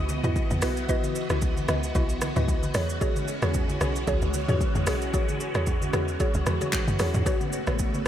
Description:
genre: amapiano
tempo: 113 BPM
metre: 4/4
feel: swing 55% on 16ths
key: unclear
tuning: A4 = 445 Hz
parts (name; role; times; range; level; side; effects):
- phased string machine; sustained chords; 0.0-8.1 s; C#3 to D#5; -32 LUFS; equal; ensemble chorus, phaser
- tight log drum bass; bass; 0.0-8.0 s; A1 to F#2; -28 LUFS; equal; none
- deep house drum kit; drums; 0.1-8.1 s; handclaps, hi-hat, kick drum, rim click, shaker, toms; -28 LUFS; equal; overdrive
- congas; percussion; 0.1-8.1 s; none; -35 LUFS; left 1 dB; none
- mallet-like synth pluck; stabs; 0.2-8.1 s; E4 to D#5; -31 LUFS; equal; chorus, phaser, tape echo
room: moderate cathedral reverb, RT60 5.3 s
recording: dreamy mix soaked in reverb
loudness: -23 LUFS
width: side -10 dB against mid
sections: 0.0-8.1 A section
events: none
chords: 0.0 C#m11; 2.7 E69; 7.3 A69

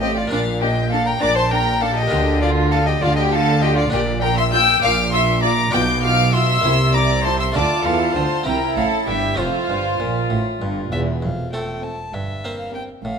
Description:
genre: classical, baroque-style concerto movement with solo episodes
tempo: 66 BPM (dotted quarters)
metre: 6/8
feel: straight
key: Bb major, F major from 3.9 s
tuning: A4 = 441 Hz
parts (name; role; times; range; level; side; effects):
- warm chamber violin section; melody; 0.0-13.0 s; A4 to G6; -25 LUFS; left 3 dB; none
- warm violin; melody; 0.0-13.2 s; C5 to E6; -23 LUFS; left 2 dB; none
- rich chamber violin section; second line; 0.0-13.0 s; F4 to G5; -22 LUFS; left 1 dB; none
- dark chamber viola section; accompaniment; 0.0-13.0 s; C4 to F4; -27 LUFS; right 1 dB; none
- harpsichord; accompaniment; 0.0-13.2 s; E2 to C5; -29 LUFS; equal; none
- rich chamber double bass section; bass; 0.0-13.2 s; E1 to E2; -24 LUFS; right 3 dB; none
- warm chamber cello section; bass; 0.0-13.2 s; E2 to E3; -23 LUFS; equal; none
room: moderate scoring stage reverb, RT60 1.6 s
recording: close, detailed microphones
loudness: -16 LUFS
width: side -6 dB against mid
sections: 0.0-11.2 A section; 11.2-13.2 B section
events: none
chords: 0.3 Bb; 2.1 Bb/D; 3.9 Bb6; 5.7 Dm13/B; 6.6 C7; 7.6 Dm; 8.5 C; 9.4 F; 12.1 C7/G

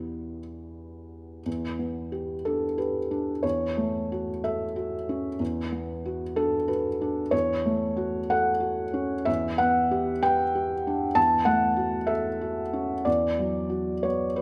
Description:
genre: neoclassical minimalist piano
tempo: 62 BPM (dotted quarters)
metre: 6/8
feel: uneven beats, rubato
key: unclear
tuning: A4 = 439 Hz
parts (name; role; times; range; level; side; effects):
- felt-muted upright piano; solo; 0.0-14.4 s; E2 to A5; -27 LUFS; equal; none
room: wet large studio reverb, RT60 1.3 s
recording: band playing live in one room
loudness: -27 LUFS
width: mono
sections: 0.0-1.5 A section; 1.5-14.4 B section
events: none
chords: 0.0 Em; 1.5 G6/E; 3.4 A6/E; 5.4 Bm/E; 7.3 F#m/E; 9.3 G6/E; 11.2 A6/E; 13.1 Bm/E

